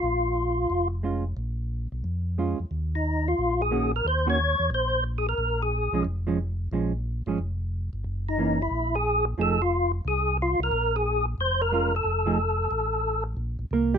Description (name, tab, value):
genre	jazz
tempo	180 BPM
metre	4/4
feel	swing 64% on 8ths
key	Bb minor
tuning	A4 = 440 Hz
part	percussive tonewheel organ	melody	0.0-0.9, 3.0-6.0, 8.3-13.2 s	Eb4 to Db5	-25 LUFS	left 1 dB	slow rotary speaker, overdrive, chorus vibrato
part	mellow tonewheel organ	bass	0.0-14.0 s	F1 to F2	-28 LUFS	equal	overdrive, chorus vibrato, slow rotary speaker
part	hollow-body jazz guitar	accompaniment	1.0-9.6, 11.7-14.0 s	Eb3 to Bb4	-26 LUFS	right 5 dB	none
room	light reverb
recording	minimal, uncompressed stereo recording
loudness	-24 LUFS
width	side -7 dB against mid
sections	0.0-13.4 A section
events	none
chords	0.0 Bbm7; 2.7 Eb7(no3); 5.4 Bbm7; 8.0 Gb7; 9.4 F7#9; 10.7 Bbm7; 12.0 F; 13.4 N.C.